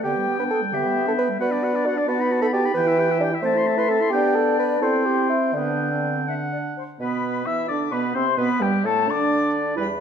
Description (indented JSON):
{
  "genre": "quick classical-period movement for wind quintet",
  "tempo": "87 BPM (dotted quarters)",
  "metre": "6/8",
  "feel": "rubato",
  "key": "unclear",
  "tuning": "A4 = 440 Hz",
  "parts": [
    { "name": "silver concert flute", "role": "melody", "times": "0.0-10.0 s", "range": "B4 to E6", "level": "-26 LUFS", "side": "left 7 dB", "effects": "none" },
    { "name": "clear oboe", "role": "second line", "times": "0.0-9.9 s", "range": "G4 to C6", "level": "-28 LUFS", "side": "left 3 dB", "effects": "none" },
    { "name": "mellow clarinet", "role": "accompaniment", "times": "0.0-9.9 s", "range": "D3 to G4", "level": "-28 LUFS", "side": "right 7 dB", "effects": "none" },
    { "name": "warm French horn", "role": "accompaniment", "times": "0.0-9.9 s", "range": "D3 to E4", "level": "-26 LUFS", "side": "left 1 dB", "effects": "none" },
    { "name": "warm bassoon", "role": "bass", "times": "0.0-10.0 s", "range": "E2 to C5", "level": "-24 LUFS", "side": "right 2 dB", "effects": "none" }
  ],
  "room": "wet recital hall reverb, RT60 1.4 s",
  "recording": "minimal, uncompressed stereo recording",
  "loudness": "-19 LUFS",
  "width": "side -7 dB against mid",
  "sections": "0.0-7.0 A section; 7.0-10.0 B section",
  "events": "none",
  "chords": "0.0 G/D; 1.4 Bm; 2.1 B7; 2.8 Em; 3.4 Am; 4.1 G/B; 4.8 C; 5.5 G/D; 6.3 D; 7.0 Cmaj9/B; 8.4 D5"
}